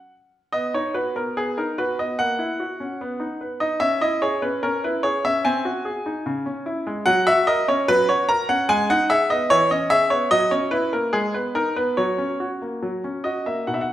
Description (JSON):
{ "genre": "classical-period piano sonatina", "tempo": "74 BPM", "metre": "2/4", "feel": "straight", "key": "B major", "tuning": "A4 = 440 Hz", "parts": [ { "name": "clear grand piano", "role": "solo", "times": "0.0-13.9 s", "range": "B2 to A#5", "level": "-19 LUFS", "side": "equal", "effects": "none" } ], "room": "wet recital hall reverb, RT60 1.3 s", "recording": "none", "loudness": "-19 LUFS", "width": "side -12 dB against mid", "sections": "0.5-13.7 A section", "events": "none", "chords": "0.0 F#5; 0.5 B; 2.2 F#7/A#; 3.0 B; 3.8 C#m; 5.5 G#7/B#; 6.3 C#m; 7.1 F#; 8.7 G#m; 9.5 C#m7/E; 10.3 F#7; 11.1 G#m; 12.0 F#" }